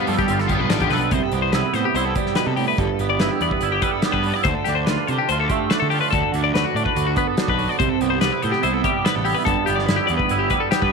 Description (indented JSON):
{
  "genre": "math rock and midwest emo",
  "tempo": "144 BPM",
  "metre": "4/4",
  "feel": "straight",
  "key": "G major",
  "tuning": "A4 = 440 Hz",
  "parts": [
    { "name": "twangy electric guitar", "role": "accompaniment", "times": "0.0-10.9 s", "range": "G2 to A4", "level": "-23 LUFS", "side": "right 15 dB", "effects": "analog chorus" },
    { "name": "twelve-string electric guitar", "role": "arpeggios", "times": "0.0-10.9 s", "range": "F#4 to D5", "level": "-22 LUFS", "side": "left 13 dB", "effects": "none" },
    { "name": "biting overdriven guitar", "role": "riff", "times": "0.0-1.0 s", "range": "D3 to F4", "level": "-27 LUFS", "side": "left 14 dB", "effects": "none" },
    { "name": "fuzz picked electric bass", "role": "bass", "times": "0.1-10.9 s", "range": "G1 to D3", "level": "-25 LUFS", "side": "equal", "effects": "overdrive" },
    { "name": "modern studio drum kit", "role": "drums", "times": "0.1-10.9 s", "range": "hi-hat, kick drum, snare drum", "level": "-25 LUFS", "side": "left 1 dB", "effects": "none" }
  ],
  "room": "light reverb, small room reverb",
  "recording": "1960s-style stereo with parts hard left and right",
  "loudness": "-18 LUFS",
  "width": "side -4 dB against mid",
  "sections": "0.0-1.1 A section; 1.1-10.9 B section",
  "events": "none",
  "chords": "0.0 G7; 1.1 Cmaj7; 2.8 G6; 4.5 Dm7; 6.1 Bm7/D; 7.8 Cmaj7; 9.5 G6"
}